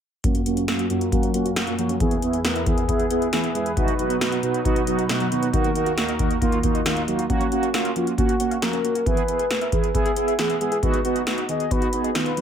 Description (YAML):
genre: synth-pop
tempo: 136 BPM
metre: 4/4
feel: straight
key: F# major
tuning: A4 = 443 Hz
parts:
  - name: mellow synth brass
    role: accompaniment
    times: 0.2-12.4 s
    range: A#3 to A#4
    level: -23 LUFS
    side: right 2 dB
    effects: chorus, low-pass filter, tape echo
  - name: warm analog pad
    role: sustained chords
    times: 0.2-7.3 s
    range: D#2 to B4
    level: -29 LUFS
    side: left 1 dB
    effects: chorus, tremolo, low-pass filter
  - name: soft round pluck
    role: arpeggios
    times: 0.2-12.4 s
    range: F#2 to E#5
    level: -30 LUFS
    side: left 1 dB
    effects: chorus, low-pass filter, tape echo
  - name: electro analog drum machine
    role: drums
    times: 0.2-12.4 s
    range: hi-hat, kick drum, snare drum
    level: -24 LUFS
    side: left 1 dB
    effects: none
  - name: mellow horn-like synth lead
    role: melody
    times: 8.0-12.4 s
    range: E#4 to D#5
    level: -26 LUFS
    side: left 2 dB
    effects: chorus, tape echo
room: moderate spring reverb, RT60 1.2 s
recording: echo-heavy mix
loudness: -20 LUFS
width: side -8 dB against mid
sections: 0.2-7.3 A section; 7.3-12.4 B section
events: filter sweep 0.2-7.3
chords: 0.2 F#maj7; 2.0 E; 3.8 B; 5.5 D#m; 7.3 F#maj7; 9.1 E; 10.8 B